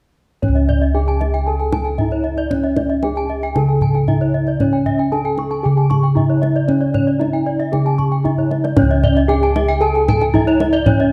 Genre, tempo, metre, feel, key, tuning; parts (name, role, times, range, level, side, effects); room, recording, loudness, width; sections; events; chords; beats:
Balinese gamelan; 115 BPM; 4/4; straight; C# pelog; A4 = 440 Hz
gamelan-type bronze metallophone; melody; 0.4-11.1 s; C#4 to A4-40c; -23 LUFS; equal
gamelan-type bronze metallophone; arpeggios; 0.4-11.1 s; C#5 to C#6; -26 LUFS; equal
gamelan-type bossed gongs; bass; 0.4-11.1 s; C#2 to D4; -20 LUFS; equal
kendang; percussion; 0.4-11.1 s; -24 LUFS; equal
gamelan-type bronze metallophone; arpeggios; 0.7-10.9 s; C#5 to C#6; -28 LUFS; equal
moderate recital hall reverb, RT60 1.8 s; dark, warm production; -17 LUFS; mono
0.4-11.1 A section
drum fill 8.4-8.8
| 0.43 0.95 1.47 1.99 | 2.52 3.04 3.56 4.08 | 4.60 5.12 5.65 6.17 | 6.69 7.21 7.73 8.26 | 8.78 9.30 9.82 10.34 | 10.86